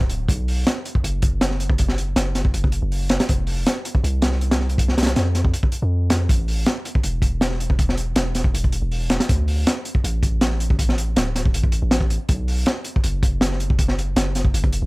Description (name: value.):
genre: drum and bass, jungle.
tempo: 160 BPM.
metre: 4/4.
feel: straight.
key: unclear.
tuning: A4 = 441 Hz.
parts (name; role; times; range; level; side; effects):
long sustained 808-style bass; bass; 0.0-14.9 s; D1 to F2; -22 LUFS; equal; none.
crunchy breakbeat drum kit; drums; 0.0-14.8 s; hi-hat, kick drum, snare drum; -20 LUFS; equal; none.
room: little or no reverb.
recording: none.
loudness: -18 LUFS.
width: side -24 dB against mid.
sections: 0.0-14.9 A section.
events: none.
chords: none.